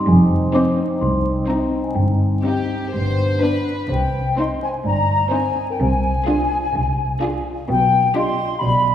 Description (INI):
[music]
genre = cinematic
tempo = 127 BPM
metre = 4/4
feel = straight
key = C minor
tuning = A4 = 440 Hz
[part]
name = celesta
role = melody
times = 0.0-8.9 s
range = Bb4 to D6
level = -29 LUFS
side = left 1 dB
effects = none
[part]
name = mellow French horn section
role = sustained chords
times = 0.0-3.7 s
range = B3 to Eb4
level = -23 LUFS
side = left 2 dB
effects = none
[part]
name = dark studio double bass section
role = bass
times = 0.1-8.9 s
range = F1 to C2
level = -24 LUFS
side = right 1 dB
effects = none
[part]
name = warm studio cello section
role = bass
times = 0.1-8.9 s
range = C2 to C3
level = -22 LUFS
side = right 1 dB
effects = none
[part]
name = dark studio violin section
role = second line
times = 0.5-8.5 s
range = D4 to F4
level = -28 LUFS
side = left 2 dB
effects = none
[part]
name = warm studio violin section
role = melody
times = 0.6-8.5 s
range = G4 to C5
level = -28 LUFS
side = left 2 dB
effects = none
[part]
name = warm studio viola section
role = accompaniment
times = 0.6-8.5 s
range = B3 to D4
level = -27 LUFS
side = equal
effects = none
[part]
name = mellow hollow small flute group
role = second line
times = 3.9-8.9 s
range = G5 to C6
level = -20 LUFS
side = left 2 dB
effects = none
[sound]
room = wet concert hall reverb, RT60 1.9 s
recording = heard from further back in the room, vinyl crackle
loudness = -17 LUFS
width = side -10 dB against mid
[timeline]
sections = 0.0-3.9 A section; 3.9-8.9 A section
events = none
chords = 0.1 Fm7; 2.0 Cm/G; 2.9 G; 3.9 Cm; 5.8 Dm7b5/C; 7.7 G7/B